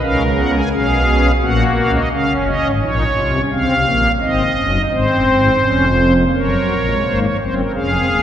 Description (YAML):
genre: classical, baroque-style 4-part fugue for pipe organ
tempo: 85 BPM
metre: 3/4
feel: straight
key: F# major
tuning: A4 = 440 Hz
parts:
  - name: pipe organ, strings celeste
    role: solo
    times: 0.0-8.2 s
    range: D#1 to G#5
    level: -13 LUFS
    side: equal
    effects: none
room: wet church reverb, RT60 3.0 s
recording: recorded in a church or concert hall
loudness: -13 LUFS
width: side -10 dB against mid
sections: 0.0-6.3 A section; 6.3-8.2 B section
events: none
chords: 0.0 C#7; 1.4 F#/A#; 2.1 C#; 3.5 A#madd9; 4.2 G#7; 5.6 C#/E#; 6.3 F#